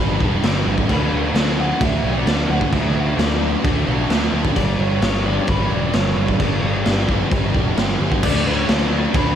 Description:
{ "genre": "rock, shoegaze and dream pop", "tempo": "131 BPM", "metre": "4/4", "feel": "straight", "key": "unclear", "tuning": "A4 = 440 Hz", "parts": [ { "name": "electric guitar through a small old amp", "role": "melody", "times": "0.0-9.4 s", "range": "A4 to F#5", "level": "-27 LUFS", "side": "left 1 dB", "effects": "wide subtle chorus, analog delay" }, { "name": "thick fuzz guitar", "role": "riff", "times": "0.0-9.4 s", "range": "G2 to D4", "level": "-21 LUFS", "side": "right 1 dB", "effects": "distortion, ensemble chorus" }, { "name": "modern bright picked electric bass", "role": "bass", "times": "0.0-9.3 s", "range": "E1 to D2", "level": "-22 LUFS", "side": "equal", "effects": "none" }, { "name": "raw garage drum kit", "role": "drums", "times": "0.2-9.3 s", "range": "crash cymbal, kick drum, snare drum", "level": "-20 LUFS", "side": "equal", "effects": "none" } ], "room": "light reverb", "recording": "none", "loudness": "-16 LUFS", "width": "side -9 dB against mid", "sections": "0.0-8.2 A section; 8.2-9.4 B section", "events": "none", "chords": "0.0 G6; 0.9 D5; 4.6 G5; 8.2 D5" }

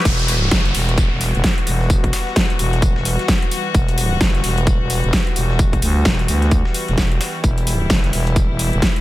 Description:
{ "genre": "bass house", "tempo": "130 BPM", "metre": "4/4", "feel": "swing 60% on 16ths", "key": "E minor", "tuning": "A4 = 440 Hz", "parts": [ { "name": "rich chamber string section", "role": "sustained chords", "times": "0.1-9.0 s", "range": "E3 to F#4", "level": "-25 LUFS", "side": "left 2 dB", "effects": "sidechain pumping" }, { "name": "growling FM bass", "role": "bass", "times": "0.1-8.8 s", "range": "E1 to D2", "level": "-19 LUFS", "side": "equal", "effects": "overdrive, sidechain pumping, high-pass filter" }, { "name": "big-room dance drum kit", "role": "drums", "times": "0.1-9.0 s", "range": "crash cymbal, hi-hat, snare drum", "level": "-22 LUFS", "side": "equal", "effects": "none" }, { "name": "dusty soul sampler-style drum kit", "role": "drums", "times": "0.1-9.0 s", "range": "hi-hat, snare drum, tambourine", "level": "-30 LUFS", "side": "left 2 dB", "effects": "sidechain pumping on perc, high-pass filter on perc, sidechain pumping on hats, high-pass filter on hats, high-pass filter on snare" }, { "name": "electronic kick drum", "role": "drums", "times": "0.1-8.9 s", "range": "none", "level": "-18 LUFS", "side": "equal", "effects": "overdrive, high-pass filter on kick" }, { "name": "downlifter", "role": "sound effects", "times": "0.1-3.7 s", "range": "none", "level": "-25 LUFS", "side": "equal", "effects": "none" } ], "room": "digital ambience", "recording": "none", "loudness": "-15 LUFS", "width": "side -16 dB against mid", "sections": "0.1-9.0 A section", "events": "drop 0.1-9.0", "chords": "0.1 Emadd9" }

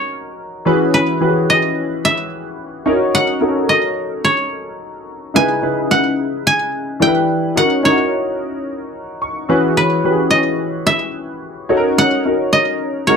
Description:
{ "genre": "pop", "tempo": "109 BPM", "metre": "4/4", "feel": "straight", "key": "unclear", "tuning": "A4 = 439 Hz", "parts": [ { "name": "koto", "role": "melody", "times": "0.0-13.2 s", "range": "B4 to G#5", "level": "-16 LUFS", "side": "right 1 dB", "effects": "slapback echo" }, { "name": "warm concert grand piano", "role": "accompaniment", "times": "0.0-13.2 s", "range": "C#3 to C#6", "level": "-17 LUFS", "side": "left 1 dB", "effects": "analog chorus" } ], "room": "light reverb", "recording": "dry, close 1970s-style studio recording", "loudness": "-14 LUFS", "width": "side -6 dB against mid", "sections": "0.0-13.2 A section", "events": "grand piano fill 8.9-9.8", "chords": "0.0 D#m7; 0.7 E6; 2.9 D#m7; 5.3 C#m9; 7.0 Em7; 7.6 D#m7; 9.5 E6; 11.7 D#m7" }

